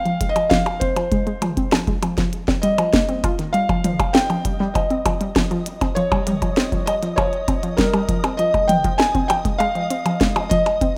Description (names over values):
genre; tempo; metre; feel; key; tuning
IDM; 99 BPM; 4/4; straight; unclear; A4 = 441 Hz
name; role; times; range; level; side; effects
felt-muted upright piano; melody; 0.0-11.0 s; Bb4 to Ab5; -24 LUFS; equal; digital delay
warbly dusty pluck; arpeggios; 0.0-10.9 s; Eb3 to F4; -25 LUFS; equal; chorus, cassette tape, digital delay
glitchy drum kit; drums; 0.1-10.9 s; hi-hat, percussion blips, snare drum, toms; -24 LUFS; equal; overdrive, studio reverb
electronic kick drum; drums; 0.2-10.9 s; none; -27 LUFS; equal; studio reverb
flickering grainy texture; texture; 4.3-11.0 s; Eb5; -35 LUFS; equal; built-in reverb
room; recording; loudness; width
light reverb; rough home demo mix; -20 LUFS; mono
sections
0.0-11.0 A section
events
none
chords
0.0 Fm7; 3.5 Eb7/F; 8.4 Ab/F